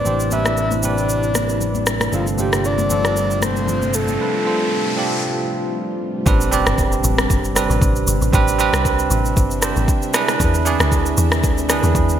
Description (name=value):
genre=amapiano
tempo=116 BPM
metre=4/4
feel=swing 55% on 16ths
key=A minor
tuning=A4 = 435 Hz
part: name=breathy flute-like synth lead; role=melody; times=0.0-5.8 s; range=F4 to E5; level=-22 LUFS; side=left 1 dB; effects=chorus, low-pass filter, digital delay
part: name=bell-like tine electric piano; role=accompaniment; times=0.0-12.2 s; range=C4 to D5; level=-22 LUFS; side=right 5 dB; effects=low-pass filter
part: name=string machine, cellos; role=sustained chords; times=0.0-12.2 s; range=C3 to E5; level=-25 LUFS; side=left 1 dB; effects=ensemble chorus, sidechain pumping, low-pass filter
part: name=fingered electric bass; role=bass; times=0.1-4.2 s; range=G1 to A1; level=-23 LUFS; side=equal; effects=none
part: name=afro-pop drum kit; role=drums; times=0.1-12.2 s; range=kick drum, rim click, shaker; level=-20 LUFS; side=equal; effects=gated reverb
part: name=congas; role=percussion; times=0.3-4.2 s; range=none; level=-29 LUFS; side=left 7 dB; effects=none
part: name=riser and impact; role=sound effects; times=3.3-8.3 s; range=none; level=-28 LUFS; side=equal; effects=none
part: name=deep log drum bass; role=bass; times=6.3-12.2 s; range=G1 to E2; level=-20 LUFS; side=equal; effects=none
room=light reverb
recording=bright 1980s-style digital production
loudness=-16 LUFS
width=side -10 dB against mid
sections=0.0-6.3 A section; 6.3-12.2 B section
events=riser 3.3-6.3; break 4.2-6.3; drop 6.3-12.2; impact 6.3-8.3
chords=0.0 Am11; 2.1 G9sus4; 6.3 Am11; 10.1 E7